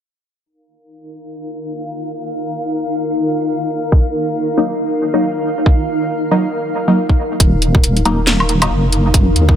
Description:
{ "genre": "deep dubstep", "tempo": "138 BPM", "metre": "4/4", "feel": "swing 59% on 16ths, half-time", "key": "Eb minor", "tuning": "A4 = 440 Hz", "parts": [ { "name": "granular cloud pad", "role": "sustained chords", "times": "1.1-9.6 s", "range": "Eb4 to F5", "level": "-19 LUFS", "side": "equal", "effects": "built-in reverb, vintage 12-bit sampler grit" }, { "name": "electronic kick drum", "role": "drums", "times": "3.9-9.6 s", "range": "none", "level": "-12 LUFS", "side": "equal", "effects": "none" }, { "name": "filtered dub chord stab", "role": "stabs", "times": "4.6-8.7 s", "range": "Gb3 to Eb4", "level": "-19 LUFS", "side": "left 1 dB", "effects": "phaser, lush chorus, dub echo" }, { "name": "deep soft wobble bass", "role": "bass", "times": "7.4-9.6 s", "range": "Eb1 to Eb2", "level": "-14 LUFS", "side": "equal", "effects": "chorus" }, { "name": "garage drum kit", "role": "drums", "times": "7.4-9.5 s", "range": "hi-hat, snare drum, woodblock", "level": "-17 LUFS", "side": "equal", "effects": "none" } ], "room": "light reverb", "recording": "low-pass filter", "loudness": "-13 LUFS", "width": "side -10 dB against mid", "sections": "0.4-7.4 A section; 7.4-9.6 B section", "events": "filter sweep 0.4-7.4", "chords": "0.4 Eb5; 7.4 Ebm" }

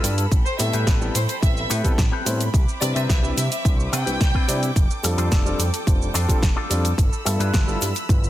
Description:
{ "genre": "nu-disco, nu disco", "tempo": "108 BPM", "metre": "4/4", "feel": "straight", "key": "A minor", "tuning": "A4 = 441 Hz", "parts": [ { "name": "dark baby grand piano", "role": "accompaniment", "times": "0.0-8.3 s", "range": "G3 to E5", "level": "-29 LUFS", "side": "equal", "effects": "tape echo" }, { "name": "rich chamber violin section", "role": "sustained chords", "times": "0.0-8.3 s", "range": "C4 to E6", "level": "-33 LUFS", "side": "right 1 dB", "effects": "sidechain pumping" }, { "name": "electric guitar with an envelope filter", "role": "riff", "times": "0.0-7.9 s", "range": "B3 to B4", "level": "-31 LUFS", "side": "left 3 dB", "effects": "wide subtle chorus, tape echo" }, { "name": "fat analog bass", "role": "bass", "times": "0.0-8.3 s", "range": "F1 to C3", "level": "-24 LUFS", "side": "equal", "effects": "none" }, { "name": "house drum kit", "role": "drums", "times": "0.0-8.3 s", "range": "cabasa, hi-hat, snare drum", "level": "-28 LUFS", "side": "equal", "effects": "none" }, { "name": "egg shaker", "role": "percussion", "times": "0.0-8.2 s", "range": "none", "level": "-34 LUFS", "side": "right 5 dB", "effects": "none" }, { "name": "electronic kick drum", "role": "drums", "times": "0.3-8.2 s", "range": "none", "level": "-19 LUFS", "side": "equal", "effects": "none" }, { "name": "rich studio violin section", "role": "melody", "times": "0.5-4.7 s", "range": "C5 to G5", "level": "-29 LUFS", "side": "left 1 dB", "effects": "ping-pong delay" } ], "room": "studio reverb", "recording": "dense, heavily limited modern master", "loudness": "-18 LUFS", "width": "side -14 dB against mid", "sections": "0.0-8.3 A section", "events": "none", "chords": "0.3 Am9; 2.5 Cmaj9; 4.8 F69; 7.0 G13" }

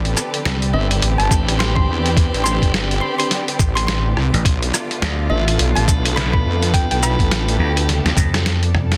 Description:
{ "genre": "glitch hop", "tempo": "105 BPM", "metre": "4/4", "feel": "swing 59% on 16ths", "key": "A minor", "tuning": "A4 = 440 Hz", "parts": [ { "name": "dark chamber string section", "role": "sustained chords", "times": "0.0-9.0 s", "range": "D3 to B4", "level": "-29 LUFS", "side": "equal", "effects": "sidechain pumping" }, { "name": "wobble bass", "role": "bass", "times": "0.0-7.6 s", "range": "G1 to F2", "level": "-21 LUFS", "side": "equal", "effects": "chorus" }, { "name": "granular cloud pad", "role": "texture", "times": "0.0-9.0 s", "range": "B3 to D5", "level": "-34 LUFS", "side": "equal", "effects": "none" }, { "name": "boom bap sampler-style drum kit", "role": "drums", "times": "0.1-9.0 s", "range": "hi-hat, rim click, shaker, snare drum, toms", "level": "-24 LUFS", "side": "equal", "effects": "none" }, { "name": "vintage slap bass", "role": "bass", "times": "0.5-0.7, 4.3-9.0 s", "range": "A1 to F2", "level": "-20 LUFS", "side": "equal", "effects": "none" }, { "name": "woody wave-folded pluck", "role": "melody", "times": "0.7-7.5 s", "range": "E5 to C6", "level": "-28 LUFS", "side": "equal", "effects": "chorus, tape echo" }, { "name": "tonewheel organ", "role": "stabs", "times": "0.7-7.9 s", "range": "C4 to E5", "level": "-29 LUFS", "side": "equal", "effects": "overdrive, stopped rotary speaker, sidechain pumping, tape echo" }, { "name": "electronic kick drum", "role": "drums", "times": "1.3-8.3 s", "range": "none", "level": "-19 LUFS", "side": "equal", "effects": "none" } ], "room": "digital ambience", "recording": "dense, heavily limited modern master", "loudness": "-18 LUFS", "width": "mono", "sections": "0.0-9.0 A section", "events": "drum fill 7.9-9.0; kick drops out 8.4-9.0", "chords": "0.0 Am11; 4.5 Bm7b5" }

